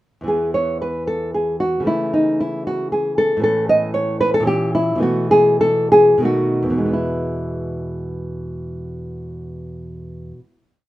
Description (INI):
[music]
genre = classical, baroque-style dance for nylon-string guitar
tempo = 86-118 BPM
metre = 3/4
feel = rubato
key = E major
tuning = A4 = 441 Hz
[part]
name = nylon-string guitar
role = solo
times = 0.2-10.6 s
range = E2 to D#5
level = -17 LUFS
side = equal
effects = none
[sound]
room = moderate studio reverb, RT60 0.6 s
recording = minimal, uncompressed stereo recording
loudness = -16 LUFS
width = side -16 dB against mid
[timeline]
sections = 0.3-6.9 A section; 6.9-10.9 final chord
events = slowing down 2.7-6.9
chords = 0.3 E5; 1.9 A/C#; 3.4 A; 4.5 A#dim7; 5.0 B7sus4; 6.2 B7; 6.9 E